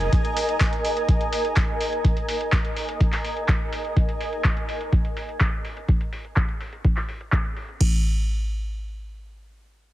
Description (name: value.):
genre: acid house.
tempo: 125 BPM.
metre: 4/4.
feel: straight.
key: F minor.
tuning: A4 = 440 Hz.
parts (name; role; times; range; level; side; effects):
booming analog drum machine; drums; 0.0-7.8 s; handclaps, hi-hat; -29 LUFS; equal; low-pass filter on hats, low-pass filter on cymbals, low-pass filter on snare.
granular cloud pad; texture; 0.0-4.0 s; Bb4 to Ab5; -27 LUFS; right 1 dB; built-in reverb, sidechain pumping.
booming analog drum machine; drums; 0.1-7.9 s; crash cymbal, kick drum; -22 LUFS; equal; none.
room: light reverb, digital ambience.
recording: heavily compressed radio sound, multiband compression.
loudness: -21 LUFS.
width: side -15 dB against mid.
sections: 0.0-7.8 A section; 7.8-9.9 B section.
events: filter sweep on drum 0.0-7.8.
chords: 0.0 Fm7 (rootless); 7.8 N.C..